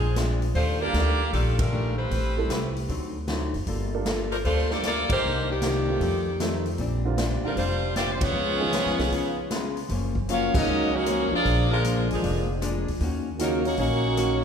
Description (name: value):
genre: jazz, big band swing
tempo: 154 BPM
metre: 4/4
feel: swing 67% on 8ths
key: F# major from 9.9 s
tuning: A4 = 440 Hz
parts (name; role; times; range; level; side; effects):
- edgy saxophone section; melody; 0.0-14.4 s; Eb3 to E#5; -27 LUFS; left 1 dB; none
- archtop guitar, miked and amplified; accompaniment; 0.0-14.4 s; F2 to B4; -31 LUFS; left 3 dB; none
- upright bass; bass; 0.0-14.4 s; F1 to F2; -28 LUFS; equal; none
- swinging big-band drum kit; drums; 0.2-14.3 s; crash cymbal, hi-hat, kick drum, ride cymbal, rim click, snare drum; -32 LUFS; equal; none
- warm upright piano; accompaniment; 0.8-11.0, 13.4-14.0 s; D3 to E#5; -33 LUFS; right 4 dB; none
- warm trombone section; second line; 8.2-14.4 s; C#3 to E#4; -29 LUFS; right 2 dB; none
room: wet scoring stage reverb, RT60 1.7 s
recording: recorded in a church or concert hall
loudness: -23 LUFS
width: side -7 dB against mid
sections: 0.0-9.9 A section; 9.9-14.4 B section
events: band accent 1.5, 5.0, 8.1, 10.5; break 9.1-9.9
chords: 0.0 Bb9; 0.6 Ebmaj9#11; 2.1 Am9; 2.9 D7b9; 3.7 Gm9; 5.2 Cm9; 6.0 F7; 6.8 Bb69; 8.3 Db7; 9.9 F#maj7; 11.4 A#7; 13.0 D#m7